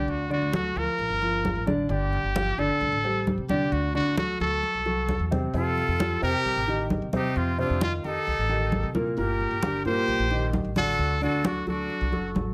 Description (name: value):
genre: latin, Cuban son and guajira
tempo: 132 BPM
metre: 4/4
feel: straight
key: unclear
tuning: A4 = 435 Hz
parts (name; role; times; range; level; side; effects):
- bright trumpet; melody; 0.0-12.3 s; F4 to C5; -30 LUFS; equal; slapback echo, plate reverb
- warm concert grand piano; arpeggios; 0.0-12.5 s; Bb2 to D5; -31 LUFS; equal; none
- upright bass; bass; 0.0-12.5 s; F#1 to C3; -33 LUFS; equal; none
- congas; percussion; 0.1-12.5 s; none; -32 LUFS; equal; none
- breathy bright jazz flute; second line; 5.5-12.3 s; C4 to G4; -37 LUFS; equal; none
room: light reverb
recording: none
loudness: -26 LUFS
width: mono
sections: 0.0-12.5 A section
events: none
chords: 0.1 D; 1.0 Bb; 1.9 G5; 2.8 Csus2; 3.7 D; 5.5 Fadd9; 6.5 Cm; 7.4 F5; 8.3 Cm; 9.2 Gm; 10.1 Cm7; 11.0 D